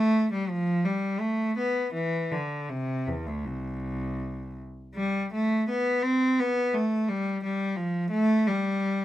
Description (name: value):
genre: classical, baroque-style suite movement for unaccompanied cello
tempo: 78-86 BPM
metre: 3/4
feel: rubato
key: C major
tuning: A4 = 439 Hz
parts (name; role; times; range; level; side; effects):
- rich cello; solo; 0.0-9.0 s; C2 to C4; -25 LUFS; equal; none
room: light reverb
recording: none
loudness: -25 LUFS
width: side -13 dB against mid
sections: 0.0-5.0 A section; 5.0-9.0 B section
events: none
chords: none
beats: | 0.52 1.22 1.95 | 2.69 3.46 4.21 | 4.97 5.68 6.39 | 7.10 7.79 8.49